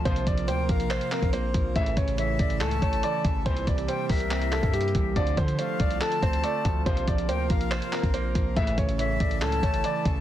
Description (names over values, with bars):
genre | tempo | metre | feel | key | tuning
hip hop, trap | 141 BPM | 4/4 | half-time | unclear | A4 = 440 Hz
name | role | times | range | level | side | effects
semi-hollow electric guitar | accompaniment | 0.0-10.2 s | A2 to C5 | -32 LUFS | right 6 dB | phaser
airy breathy pad | sustained chords | 0.0-10.2 s | C3 to Bb4 | -37 LUFS | left 1 dB | chorus
hard-hitting 808-style bass | bass | 0.0-10.2 s | A1 to D3 | -29 LUFS | equal | none
dark grand piano | melody | 0.1-10.0 s | G4 to E5 | -30 LUFS | right 1 dB | tape echo
mellow brass ensemble | stabs | 0.1-8.9 s | A2 to F3 | -40 LUFS | left 5 dB | none
lo-fi sampler-style drum kit | drums | 0.1-10.2 s | handclaps, hi-hat, kick drum | -27 LUFS | equal | none
breathy silver concert flute | second line | 0.5-10.2 s | E5 to A5 | -33 LUFS | left 5 dB | tape echo
room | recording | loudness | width
light reverb, digital ambience | dense, heavily limited modern master | -23 LUFS | side -12 dB against mid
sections
0.0-10.2 A section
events
none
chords
0.1 Bbsus2; 1.8 A; 3.5 C7; 5.2 Dm7; 6.9 Bbsus2; 8.6 A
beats
| 0.05 0.48 0.91 1.33 | 1.76 2.18 2.61 3.03 | 3.46 3.88 4.31 4.74 | 5.16 5.59 6.01 6.44 | 6.86 7.29 7.71 8.14 | 8.56 8.99 9.42 9.84